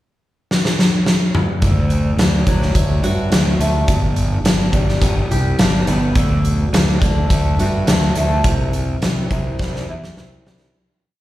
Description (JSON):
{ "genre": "quiet-loud alternative rock", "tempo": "105 BPM", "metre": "4/4", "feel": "straight", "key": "D mixolydian", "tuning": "A4 = 439 Hz", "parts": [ { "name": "big rock drum kit", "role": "drums", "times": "0.5-10.7 s", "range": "hi-hat, kick drum, snare drum, toms", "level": "-17 LUFS", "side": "equal", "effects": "none" }, { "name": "picked swing-style acoustic guitar", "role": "arpeggios", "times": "1.6-10.7 s", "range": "G2 to G4", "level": "-24 LUFS", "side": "left 1 dB", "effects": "slapback echo" }, { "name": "fuzz fingered electric bass", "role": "bass", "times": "1.6-10.7 s", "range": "G1 to G2", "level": "-18 LUFS", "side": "equal", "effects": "overdrive" } ], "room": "little or no reverb", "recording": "live gig heard through the venue's PA, club reverb", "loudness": "-14 LUFS", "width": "side -15 dB against mid", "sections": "0.0-1.6 pickup bar; 1.6-10.7 verse", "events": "drum fill 0.5-1.6, 9.6-10.7; fade-out 8.4-10.7", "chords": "0.0 N.C.; 1.6 D; 3.9 G; 6.2 D; 8.4 C" }